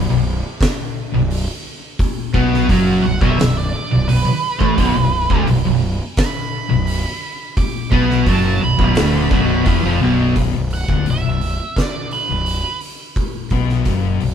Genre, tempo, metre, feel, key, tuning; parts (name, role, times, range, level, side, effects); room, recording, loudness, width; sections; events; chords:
stoner and doom metal; 86 BPM; 4/4; straight; B minor; A4 = 439 Hz
distorted electric guitar; riff; 0.0-10.4 s; B1 to B3; -22 LUFS; right 1 dB; distortion
thick fuzz guitar; riff; 0.0-14.3 s; B1 to B3; -20 LUFS; left 7 dB; distortion
thick fuzz guitar; riff; 0.0-10.4 s; B1 to B3; -20 LUFS; right 7 dB; distortion
fuzz fingered electric bass; bass; 0.0-14.3 s; B0 to B1; -21 LUFS; equal; overdrive
oversized low-tuned drum kit; drums; 0.6-14.3 s; hi-hat, kick drum, snare drum; -21 LUFS; equal
octave-fuzz lead guitar; melody; 3.0-12.8 s; B4 to D6; -24 LUFS; right 4 dB; wah, distortion, analog delay
light reverb; band playing live in one room; -15 LUFS; side -8 dB against mid
0.0-10.4 A section; 10.4-14.3 B section
lead electric guitar solo 0.0-10.4
0.0 Bm